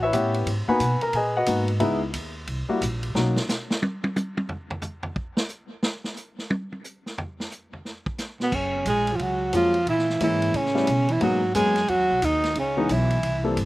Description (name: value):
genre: jazz, small-group swing and bop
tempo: 179 BPM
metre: 4/4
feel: swing 64% on 8ths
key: F# major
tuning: A4 = 438 Hz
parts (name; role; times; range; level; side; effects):
- warm grand piano; accompaniment; 0.0-3.3, 9.5-13.6 s; E3 to B5; -24 LUFS; left 2 dB; slapback echo
- upright bass; bass; 0.0-3.4, 8.5-13.7 s; F#1 to B2; -28 LUFS; equal; none
- vintage drum kit; drums; 0.1-13.7 s; crash cymbal, hi-hat, kick drum, ride cymbal, snare drum, toms; -30 LUFS; right 1 dB; none
- breathy alto saxophone; melody; 8.4-13.5 s; B3 to G#4; -24 LUFS; equal; slapback echo
- breathy baritone saxophone; second line; 8.4-13.5 s; B2 to G#3; -26 LUFS; right 4 dB; slapback echo
room: little or no reverb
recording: recorded outdoors, with no room sound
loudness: -22 LUFS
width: side -18 dB against mid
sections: 0.0-8.5 A section; 8.5-13.7 B section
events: drum solo 3.1-8.5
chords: 0.5 G#m7; 1.8 C#m9; 2.5 C7#11; 3.1 Bmaj9; 4.5 N.C.; 8.5 F#maj9; 9.9 A#m7b5; 10.5 A9; 11.2 G#m7; 12.6 C#m9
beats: 0.13 | 0.47 0.80 1.14 1.47 | 1.81 2.14 2.48 2.81 | 3.15 3.49 3.82 4.16 | 4.49 4.83 5.16 5.50 | 5.84 6.17 6.51 6.84 | 7.18 7.51 7.85 8.19 | 8.52 8.86 9.19 9.53 | 9.87 10.20 10.54 10.88 | 11.21 11.55 11.88 12.22 | 12.56 12.89 13.23 13.57